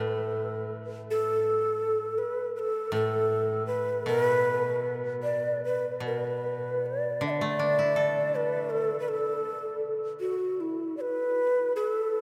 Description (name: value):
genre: japanese traditional, Japanese chamber music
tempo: 74-84 BPM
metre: 2/4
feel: rubato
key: unclear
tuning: A4 = 439 Hz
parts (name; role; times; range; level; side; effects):
- breathy mellow shakuhachi; melody; 0.0-12.2 s; E4 to E5; -29 LUFS; equal; none
- koto; accompaniment; 0.0-9.4 s; A2 to A4; -38 LUFS; equal; none
room: wet cathedral reverb, RT60 5.4 s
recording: in a vast, echoing space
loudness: -28 LUFS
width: mono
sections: 0.0-12.2 A section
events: none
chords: none